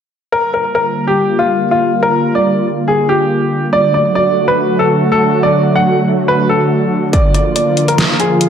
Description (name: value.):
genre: heavy wobble dubstep.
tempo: 141 BPM.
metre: 4/4.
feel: half-time.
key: unclear.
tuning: A4 = 440 Hz.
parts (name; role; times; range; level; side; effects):
warm concert grand piano; melody; 0.3-8.5 s; F4 to F#5; -14 LUFS; equal; digital delay.
supersaw pad; sustained chords; 0.3-8.5 s; D3 to F#4; -14 LUFS; equal; sidechain pumping, low-pass filter.
dubstep drum kit; drums; 7.1-8.5 s; hi-hat, snare drum; -16 LUFS; equal; none.
electronic kick drum; drums; 7.1-7.2 s; none; -12 LUFS; equal; distortion.
room: moderate digital room reverb, RT60 1.2 s, digital ambience.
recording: none.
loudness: -11 LUFS.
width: side -8 dB against mid.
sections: 0.3-8.5 A section.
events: filter sweep on supersaw synth 0.3-8.5.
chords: 0.3 Gm7; 3.7 D; 7.1 Bb.